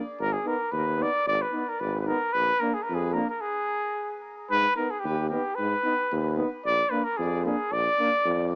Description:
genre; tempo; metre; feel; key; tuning
balkan folk, Balkan brass band; 112 BPM; 2/4; swing 55% on 16ths; Ab hungarian minor; A4 = 439 Hz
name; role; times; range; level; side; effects
warm euphonium; accompaniment; 0.0-8.6 s; D4 to Eb4; -35 LUFS; equal; cassette tape
mellow trumpet; melody; 0.2-8.5 s; G4 to D5; -25 LUFS; equal; cassette tape, tape echo
warm tuba; bass; 0.2-8.5 s; Ab1 to Ab2; -29 LUFS; equal; none
warm trombone; accompaniment; 0.4-8.1 s; Bb3 to Cb4; -33 LUFS; equal; cassette tape
room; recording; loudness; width
light reverb, small room ambience; home recording on cassette, small speaker sound; -24 LUFS; side -33 dB against mid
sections
0.0-4.5 A section; 4.5-8.6 A section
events
stop 3.4-4.5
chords
0.2 Abm; 2.4 Bb; 3.4 N.C.; 4.5 Abm; 6.6 Bb

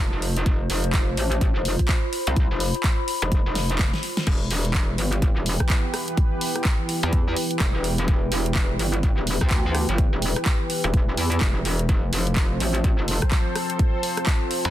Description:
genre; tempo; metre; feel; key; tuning
bass house; 126 BPM; 4/4; swing 60% on 16ths; E phrygian; A4 = 444 Hz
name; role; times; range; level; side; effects
metallic wobble bass; bass; 0.0-14.7 s; E1 to F2; -24 LUFS; equal; chorus, tube saturation, sidechain pumping
warbly tape-like pad; texture; 0.0-14.7 s; E4 to B5; -31 LUFS; equal; chorus, built-in reverb, sidechain pumping
big-room dance drum kit; drums; 0.2-14.7 s; crash cymbal, handclaps, hi-hat, rim click, snare drum; -28 LUFS; equal; none
electronic kick drum; drums; 0.5-14.4 s; none; -21 LUFS; equal; none
sweeping resonant pad; sustained chords; 4.3-14.7 s; E3 to C5; -30 LUFS; equal; chorus, sidechain pumping
room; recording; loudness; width
digital ambience; dense, heavily limited modern master; -20 LUFS; side -13 dB against mid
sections
0.0-14.7 A section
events
drum fill 3.6-4.3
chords
0.0 F; 4.3 Em; 11.9 F

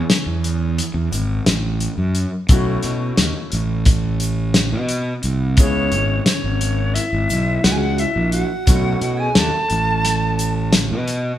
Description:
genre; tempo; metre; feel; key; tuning
progressive instrumental, band music in an uneven meter; 175 BPM (eighths); 9/8; straight; unclear; A4 = 442 Hz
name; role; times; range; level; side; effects
warm grand piano; accompaniment; 0.0-11.4 s; A3 to G#4; -29 LUFS; left 3 dB; none
warm soul drum kit; drums; 0.1-11.2 s; hi-hat, kick drum, snare drum; -17 LUFS; equal; none
fuzz fingered electric bass; bass; 0.3-11.3 s; G#1 to B2; -20 LUFS; equal; overdrive
tube shaker; percussion; 0.8-10.7 s; none; -34 LUFS; right 5 dB; none
silver concert flute; melody; 5.6-10.7 s; C#5 to A5; -22 LUFS; right 1 dB; none
vibraphone with medium mallets; second line; 5.6-10.7 s; C#4 to A4; -27 LUFS; right 1 dB; none
room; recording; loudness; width
moderate large studio reverb, RT60 1.1 s; band playing live in one room; -16 LUFS; side -12 dB against mid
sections
0.0-11.4 A section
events
none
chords
0.0 Amaj7; 2.5 B7sus4; 5.6 C#m7; 8.7 B7sus4

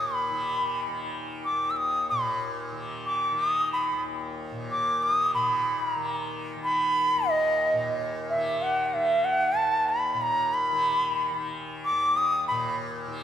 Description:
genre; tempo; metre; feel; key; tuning
indian classical, Hindustani; 92 BPM; 4/4; straight; Eb raga todi; A4 = 442 Hz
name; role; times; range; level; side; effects
bright reedy bansuri; melody; 0.0-12.8 s; Eb5 to Fb6; -24 LUFS; equal; none
tanpura; drone; 0.0-13.2 s; Eb2 to Eb3; -34 LUFS; left 1 dB; none
room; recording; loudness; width
wet concert hall reverb, RT60 2.1 s; faint mains hum; -24 LUFS; side -9 dB against mid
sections
0.0-5.4 A section; 5.4-13.2 B section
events
none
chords
none

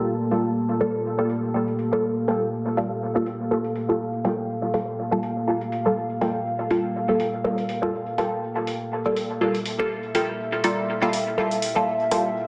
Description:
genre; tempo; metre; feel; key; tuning
dub techno; 122 BPM; 4/4; swing 55% on 16ths; G dorian; A4 = 440 Hz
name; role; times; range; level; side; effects
dark analog pad; sustained chords; 0.0-12.5 s; Bb3 to A5; -30 LUFS; equal; chorus
filtered dub chord stab; stabs; 0.0-12.3 s; G3 to A4; -26 LUFS; equal; phaser, dub echo
electronic hi-hat; drums; 0.3-12.2 s; none; -38 LUFS; equal; overdrive, small room ambience
warbly dusty pluck; riff; 2.3-12.2 s; F4 to G5; -36 LUFS; equal; none
room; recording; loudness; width
wet digital room reverb, RT60 1.1 s; dense, heavily limited modern master, low-pass filter; -25 LUFS; mono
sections
0.0-12.5 A section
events
filter sweep on analog synth pad 0.0-12.5; filter sweep 0.0-12.5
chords
0.0 Gm9

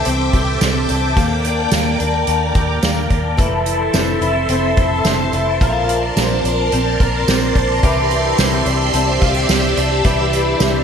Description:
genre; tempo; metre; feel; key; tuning
dream pop; 108 BPM; 4/4; straight; unclear; A4 = 440 Hz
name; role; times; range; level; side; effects
phased string machine; sustained chords; 0.0-10.8 s; G4 to D6; -20 LUFS; right 1 dB; ensemble chorus, phaser
fingerpicked twelve-string acoustic guitar; arpeggios; 0.0-10.8 s; E3 to Bb4; -19 LUFS; left 2 dB; ensemble chorus, ping-pong delay
vintage muted fingered electric bass; bass; 0.0-10.8 s; F1 to Eb2; -21 LUFS; equal; none
soft-mallet drum kit; drums; 0.0-10.7 s; hi-hat, kick drum, snare drum, tambourine; -19 LUFS; right 1 dB; none
backwards swelling texture; texture; 0.0-0.8, 7.7-10.8 s; A4 to E5; -29 LUFS; right 3 dB; built-in reverb, wide subtle chorus, ping-pong delay
room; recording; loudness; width
moderate lush hall reverb, RT60 1.6 s, small room ambience; bright 1980s-style digital production; -14 LUFS; side -7 dB against mid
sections
0.0-10.8 A section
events
none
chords
0.0 Cadd9; 1.2 Ebmaj7; 3.4 Fmaj7; 5.6 Bbadd9; 7.8 Cadd9

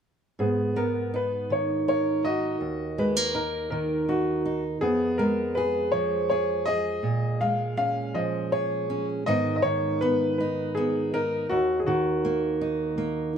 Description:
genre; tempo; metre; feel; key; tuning
acoustic folk-pop ballad; 81 BPM; 3/4; straight; unclear; A4 = 440 Hz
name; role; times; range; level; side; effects
warm baby grand piano; melody; 0.4-13.3 s; Cb4 to F5; -26 LUFS; left 2 dB; none
fingerpicked steel-string acoustic guitar; accompaniment; 0.4-13.4 s; Eb2 to Bb4; -27 LUFS; right 2 dB; none
room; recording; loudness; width
light reverb; close, detailed microphones; -24 LUFS; side -7 dB against mid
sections
0.4-9.3 A section; 9.3-13.4 B section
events
none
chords
0.4 Abmadd9; 2.6 Ebm; 4.8 Fdim; 7.0 Bbm7; 9.3 Abm; 11.5 Ebm

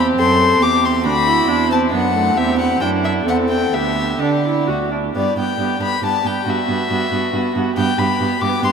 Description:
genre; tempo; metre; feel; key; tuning
quick classical-period movement for string quartet; 137 BPM; 3/4; rubato; G major; A4 = 439 Hz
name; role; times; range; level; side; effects
warm violin; melody; 0.0-8.7 s; D5 to D6; -19 LUFS; left 5 dB; none
rich violin; second line; 0.0-8.7 s; D4 to A4; -24 LUFS; left 2 dB; none
warm viola; accompaniment; 0.0-8.7 s; A3 to F#4; -21 LUFS; right 3 dB; none
rich cello; bass; 0.0-8.7 s; D2 to D3; -21 LUFS; right 6 dB; none
room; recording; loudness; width
wet cathedral reverb, RT60 6.8 s; in a vast, echoing space; -15 LUFS; side -6 dB against mid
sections
0.0-5.1 A section; 5.1-8.7 B section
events
none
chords
0.0 C/E; 1.0 D; 2.4 C/E; 3.7 Dsus4; 4.7 D; 5.1 G

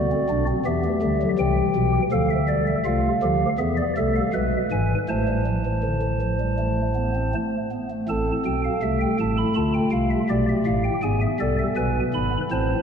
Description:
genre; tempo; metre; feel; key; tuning
classical, baroque-style 4-part fugue for pipe organ; 81 BPM; 4/4; straight; A minor; A4 = 441 Hz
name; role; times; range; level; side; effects
chamber organ, stopped flute; solo; 0.0-12.8 s; G#1 to B5; -20 LUFS; equal; none
room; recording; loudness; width
wet church reverb, RT60 3.5 s; dark, warm production; -20 LUFS; side -7 dB against mid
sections
0.0-8.1 A section; 8.1-12.8 B section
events
none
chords
0.0 Bm; 0.7 Em; 2.1 Fmaj13; 3.6 E; 5.1 Am; 9.6 Dm; 11.0 E/G#

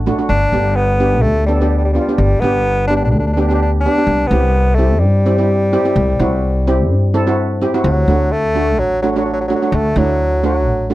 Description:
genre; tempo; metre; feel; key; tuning
calypso; 127 BPM; 4/4; straight; D mixolydian; A4 = 439 Hz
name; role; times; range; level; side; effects
upright bass; bass; 0.0-10.9 s; G1 to G2; -16 LUFS; equal; none
steel pan; accompaniment; 0.1-10.9 s; A3 to A4; -18 LUFS; right 2 dB; none
warm bassoon; melody; 0.3-10.9 s; F#3 to D4; -18 LUFS; equal; none
room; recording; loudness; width
little or no reverb; dry, close 1970s-style studio recording; -12 LUFS; side -16 dB against mid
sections
0.0-7.8 A section; 7.8-10.9 A section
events
none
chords
0.3 G; 4.1 C; 7.8 D

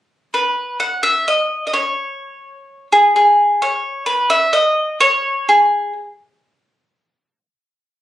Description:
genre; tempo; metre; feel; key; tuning
italian folk; 128 BPM; 3/4; straight; unclear; A4 = 436 Hz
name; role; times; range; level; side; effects
bowl-back mandolin; solo; 0.3-5.9 s; G#4 to F#5; -14 LUFS; equal; none
room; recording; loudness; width
moderate studio reverb, RT60 0.5 s; recorded on a phone in the room, studio reverb; -13 LUFS; side -13 dB against mid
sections
0.3-3.1 A section; 3.1-8.0 B section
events
none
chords
none

